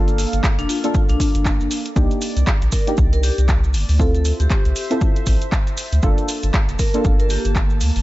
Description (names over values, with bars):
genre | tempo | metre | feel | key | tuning
deep house | 118 BPM | 4/4 | swing 59% on 16ths | G minor | A4 = 440 Hz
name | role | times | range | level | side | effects
warbly tape-like pad | sustained chords | 0.0-8.0 s | Bb3 to A5 | -31 LUFS | right 4 dB | chorus, built-in reverb, sidechain pumping
deep mellow chord stab | stabs | 0.0-8.0 s | Bb3 to A4 | -26 LUFS | equal | chorus, cassette tape, sidechain pumping, tape echo
round analog bass | bass | 0.0-8.0 s | F1 to D2 | -18 LUFS | equal | sidechain pumping
punchy analog drum machine | drums | 0.1-8.0 s | handclaps, hi-hat | -28 LUFS | equal | none
maracas | percussion | 0.1-8.0 s | none | -33 LUFS | right 4 dB | none
electronic kick drum | drums | 0.4-7.7 s | none | -18 LUFS | equal | none
vibraphone with hard mallets | melody | 0.6-7.5 s | D4 to Bb4 | -26 LUFS | left 2 dB | tape echo
room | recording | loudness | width
little or no reverb | nothing above 7.8 kHz | -16 LUFS | side -17 dB against mid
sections
0.0-8.0 A section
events
none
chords
0.0 Gm7; 1.7 Cm7; 4.0 Dm7; 6.0 Gm7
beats
0.44 0.94 1.45 | 1.96 2.47 2.98 3.49 | 4.00 4.50 5.01 5.52 | 6.03 6.54 7.05 7.55